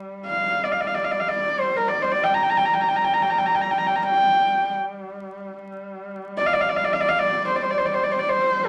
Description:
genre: mongolian traditional, Mongolian folk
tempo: free time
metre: none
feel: none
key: G yu mode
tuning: A4 = 440 Hz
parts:
  - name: warm horsehead fiddle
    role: drone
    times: 0.0-8.7 s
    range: G3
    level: -36 LUFS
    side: equal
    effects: none
  - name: warm horsehead fiddle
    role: melody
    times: 0.3-8.7 s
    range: Bb4 to Bb5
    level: -22 LUFS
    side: equal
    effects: none
room: wet studio reverb, RT60 0.8 s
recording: vinyl crackle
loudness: -22 LUFS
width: mono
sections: 0.0-8.7 A section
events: none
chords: none

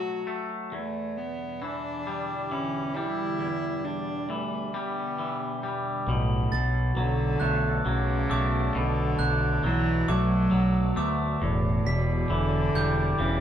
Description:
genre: post-rock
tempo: 45 BPM (dotted quarters)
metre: 6/8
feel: straight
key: B minor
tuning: A4 = 440 Hz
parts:
  - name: dark cello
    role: melody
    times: 0.0-13.4 s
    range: A2 to F#4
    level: -29 LUFS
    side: right 1 dB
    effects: none
  - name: twangy electric guitar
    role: arpeggios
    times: 0.0-13.4 s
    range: E2 to A3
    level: -31 LUFS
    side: left 2 dB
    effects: spring reverb
  - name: evolving wavetable pad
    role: sustained chords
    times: 1.3-13.4 s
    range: E2 to D5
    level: -37 LUFS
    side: right 1 dB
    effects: phaser, built-in reverb
  - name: growling picked electric bass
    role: bass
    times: 6.1-13.4 s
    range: E1 to D2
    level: -26 LUFS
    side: equal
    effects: overdrive
  - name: glockenspiel with brass mallets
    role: arpeggios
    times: 6.5-13.4 s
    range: D6 to B6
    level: -33 LUFS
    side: right 4 dB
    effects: none
room: wet studio reverb, RT60 0.7 s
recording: band playing live in one room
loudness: -24 LUFS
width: side -10 dB against mid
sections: 0.0-6.1 A section; 6.1-13.4 A section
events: none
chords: 0.0 B7(no3); 0.7 Em7; 6.1 Bm7; 11.4 Em7

